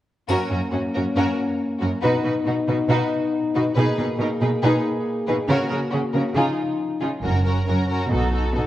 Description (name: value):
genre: cinematic, heroic adventure film score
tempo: 138 BPM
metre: 4/4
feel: straight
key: F# major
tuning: A4 = 440 Hz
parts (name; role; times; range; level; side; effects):
- warm symphonic violin section; melody; 0.3-8.7 s; F#4 to B4; -29 LUFS; left 3 dB; none
- rich symphonic violin section; second line; 0.3-8.7 s; C#4 to G#4; -30 LUFS; equal; none
- warm symphonic viola section; accompaniment; 0.3-8.7 s; C#4 to D#4; -27 LUFS; right 1 dB; none
- mellow French horn section; sustained chords; 0.3-7.0 s; E#3 to G#4; -25 LUFS; left 2 dB; none
- clear symphonic cello section; bass; 0.3-8.7 s; F#2 to C#3; -24 LUFS; right 1 dB; none
- triangle; percussion; 0.3-1.1 s; none; -43 LUFS; left 1 dB; none
- rich symphonic double bass section; bass; 7.2-8.5 s; F#1 to B1; -23 LUFS; right 1 dB; none
room: moderate concert hall reverb, RT60 1.8 s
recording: worn, warbling old tape, cassette tape, warbly pitch drift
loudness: -20 LUFS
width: side -14 dB against mid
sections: 0.3-7.2 A section; 7.2-8.7 B section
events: build-up 7.2-8.7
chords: 0.3 F#; 2.0 B; 3.8 G#madd9/B; 5.5 F#/C#; 6.4 C#add9 (rootless); 7.2 F#; 8.1 B7